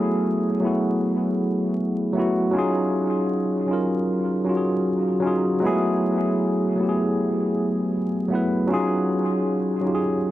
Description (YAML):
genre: hip hop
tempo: 78 BPM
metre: 4/4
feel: swing 65% on 16ths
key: unclear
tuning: A4 = 441 Hz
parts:
  - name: bright tine electric piano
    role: solo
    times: 0.0-10.3 s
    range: Gb3 to Cb5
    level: -20 LUFS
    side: equal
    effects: medium stereo tremolo, cassette tape, low-pass filter, tape echo
room: moderate spring reverb, RT60 1.5 s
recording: echo-heavy mix, vinyl crackle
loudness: -20 LUFS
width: side -14 dB against mid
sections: 0.0-10.3 A section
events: none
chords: 0.0 Gbm11; 2.5 Ebm11; 5.6 Gbm11; 8.7 Ebm11